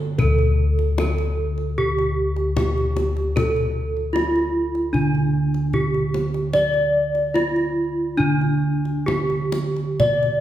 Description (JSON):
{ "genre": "Javanese gamelan", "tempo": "63-76 BPM", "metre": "4/4", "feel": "straight", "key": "unclear", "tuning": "A4 = 440 Hz", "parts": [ { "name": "gamelan-type bronze metallophone", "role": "melody", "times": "0.0-10.4 s", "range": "D4 to D5", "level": "-22 LUFS", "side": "equal", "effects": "none" }, { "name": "gamelan-type bossed gongs", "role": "bass", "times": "0.0-10.4 s", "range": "D2 to D5", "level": "-22 LUFS", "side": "equal", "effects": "none" }, { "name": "kendang", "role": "percussion", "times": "0.2-10.3 s", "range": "none", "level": "-27 LUFS", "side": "left 2 dB", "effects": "none" } ], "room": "wet recital hall reverb, RT60 1.5 s", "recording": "heard from further back in the room", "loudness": "-18 LUFS", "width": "side -12 dB against mid", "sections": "0.2-10.4 A section", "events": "none", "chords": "none" }